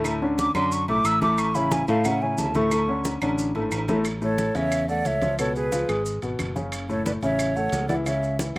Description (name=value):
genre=Afro-Cuban jazz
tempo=180 BPM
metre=4/4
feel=straight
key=A major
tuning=A4 = 439 Hz
part: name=warm concert grand piano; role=accompaniment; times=0.0-8.6 s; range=A2 to A4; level=-25 LUFS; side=left 1 dB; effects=none
part: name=modern bright fingered electric bass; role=bass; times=0.0-8.6 s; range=F#1 to A2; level=-29 LUFS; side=equal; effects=none
part: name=agogo bells and timbales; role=percussion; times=0.0-8.6 s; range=none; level=-36 LUFS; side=right 2 dB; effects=slapback echo
part: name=claves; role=percussion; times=0.0-8.6 s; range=none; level=-34 LUFS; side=right 3 dB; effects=none
part: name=congas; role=percussion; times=0.1-8.6 s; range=none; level=-32 LUFS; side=equal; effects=none
part: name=maracas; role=percussion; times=0.1-8.6 s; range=none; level=-39 LUFS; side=right 2 dB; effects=none
part: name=mellow hollow jazz flute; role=melody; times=0.4-8.4 s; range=B4 to E6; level=-25 LUFS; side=right 1 dB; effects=none
part: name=breathy jazz flute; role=second line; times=4.2-8.4 s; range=G#4 to D5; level=-30 LUFS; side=right 2 dB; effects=slapback echo
room=little or no reverb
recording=recorded outdoors, with no room sound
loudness=-21 LUFS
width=side -21 dB against mid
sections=0.0-4.1 A section; 4.1-8.6 B section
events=flute solo 0.0-4.1; drum fill 3.5-4.1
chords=0.0 Dmaj7; 1.4 A; 2.7 D5; 4.1 A; 5.4 C#7; 6.7 F#m7; 8.1 C#m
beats=| 0.05 0.38 0.71 1.05 | 1.38 1.72 2.05 2.38 | 2.71 3.05 3.38 3.72 | 4.05 4.38 4.72 5.05 | 5.39 5.72 6.06 6.39 | 6.72 7.06 7.39 7.73 | 8.06 8.40